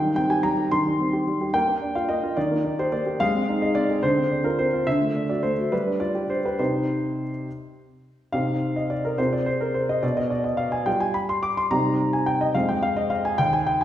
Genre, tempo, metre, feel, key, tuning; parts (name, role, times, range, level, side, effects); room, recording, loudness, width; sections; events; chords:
classical-period piano sonatina; 71 BPM (dotted quarters); 6/8; straight; C minor; A4 = 437 Hz
warm baby grand piano; solo; 0.0-13.8 s; Eb2 to D6; -21 LUFS; equal
wet recital hall reverb, RT60 1.5 s; heard from further back in the room; -21 LUFS; side -12 dB against mid
0.0-8.3 A section; 8.3-13.8 B section
0.0 Cm/Eb; 1.5 Bb; 2.4 Ebmaj7; 3.2 Ab; 4.0 Dm7; 4.9 D; 5.7 G5; 6.6 Cm; 9.2 Fm/C; 10.0 G7/B; 11.7 Cm; 12.6 Fm